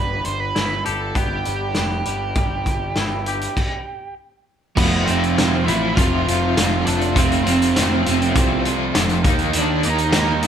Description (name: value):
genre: quiet-loud alternative rock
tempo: 100 BPM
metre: 4/4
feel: straight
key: unclear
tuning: A4 = 440 Hz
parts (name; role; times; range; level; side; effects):
- octave-fuzz lead guitar; melody; 0.0-10.5 s; B3 to F5; -24 LUFS; right 5 dB; distortion
- twangy electric guitar; arpeggios; 0.0-3.6 s; G2 to G4; -29 LUFS; left 7 dB; none
- fuzz picked electric bass; bass; 0.0-10.4 s; F1 to Eb2; -24 LUFS; equal; overdrive
- loose indie drum kit; drums; 0.2-10.5 s; crash cymbal, hi-hat, kick drum, snare drum; -21 LUFS; equal; none
- cranked stack guitar; riff; 4.8-10.5 s; Eb3 to G4; -24 LUFS; left 6 dB; overdrive, tremolo
- crunchy overdriven guitar; riff; 4.8-10.5 s; Eb3 to G4; -25 LUFS; equal; none
- distorted electric guitar; riff; 4.8-10.5 s; F2 to Eb4; -24 LUFS; right 7 dB; distortion
room: light reverb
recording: band playing live in one room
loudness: -17 LUFS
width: side -8 dB against mid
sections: 0.0-4.8 A section; 4.8-10.5 B section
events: stop 3.6-4.8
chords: 0.0 Em; 4.8 F; 9.2 Eb